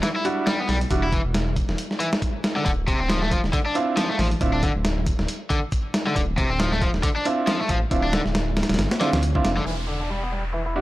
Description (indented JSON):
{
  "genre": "breakbeat, breaks",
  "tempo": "137 BPM",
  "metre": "4/4",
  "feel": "swing 57% on 16ths",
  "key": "unclear",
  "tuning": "A4 = 441 Hz",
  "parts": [
    { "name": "overdriven electric guitar", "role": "riff", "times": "0.0-10.8 s", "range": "C3 to E4", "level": "-26 LUFS", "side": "left 1 dB", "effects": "low-pass filter, tape echo" },
    { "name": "dusty soul sampler-style drum kit", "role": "drums", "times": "0.0-9.7 s", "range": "hi-hat, kick drum, snare drum", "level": "-24 LUFS", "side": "equal", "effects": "none" },
    { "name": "bright grand piano", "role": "stabs", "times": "0.2-1.0, 3.8-4.6, 7.3-10.8 s", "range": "G3 to F#4", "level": "-26 LUFS", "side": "right 2 dB", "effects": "low-pass filter, tape echo" },
    { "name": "dark detuned saw bass", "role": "bass", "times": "0.7-10.8 s", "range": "D1 to D2", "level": "-25 LUFS", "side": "equal", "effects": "none" },
    { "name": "downlifter", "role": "sound effects", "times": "9.7-10.8 s", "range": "none", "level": "-33 LUFS", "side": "equal", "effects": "none" }
  ],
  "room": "little or no reverb",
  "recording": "dry, gritty hardware recording, lossy compression artefacts",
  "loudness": "-20 LUFS",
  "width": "side -17 dB against mid",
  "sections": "0.0-9.7 A section; 9.7-10.8 B section",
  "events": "filter sweep on overdriven electric guitar 9.7-10.8",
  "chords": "0.0 Em9; 2.4 Dm9; 9.7 Em7"
}